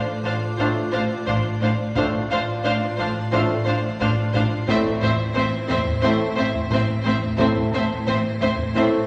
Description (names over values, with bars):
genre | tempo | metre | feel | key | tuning
cinematic, suspense film score | 88 BPM | 4/4 | straight | A minor | A4 = 440 Hz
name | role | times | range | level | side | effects
icy glass pad | sustained chords | 0.0-9.1 s | E4 to D6 | -35 LUFS | equal | chorus, built-in reverb
marimba with soft mallets | riff | 0.0-9.0 s | A2 to A3 | -30 LUFS | equal | none
felt-muted upright piano | texture | 0.0-9.1 s | B3 to B5 | -40 LUFS | equal | none
clear symphonic violin section | melody | 0.2-8.8 s | E5 to F5 | -33 LUFS | equal | none
clear symphonic violin section | second line | 0.2-8.8 s | C5 | -29 LUFS | equal | none
clear symphonic viola section | accompaniment | 0.2-8.8 s | C4 to D4 | -30 LUFS | equal | none
rich symphonic cello section | bass | 0.2-8.8 s | A2 | -30 LUFS | equal | none
rich symphonic double bass section | bass | 0.2-8.8 s | A1 | -32 LUFS | equal | none
bright trombone section | sustained chords | 0.6-9.0 s | A2 to A3 | -31 LUFS | equal | none
mellow French horn section | sustained chords | 0.6-9.0 s | C4 to F4 | -30 LUFS | equal | none
taiko ensemble | drums | 1.3-8.9 s | none | -35 LUFS | equal | none
room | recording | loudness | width
wet scoring stage reverb, RT60 1.8 s | none | -22 LUFS | mono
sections
0.0-9.1 A section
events
none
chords
0.0 F6/A; 4.7 Am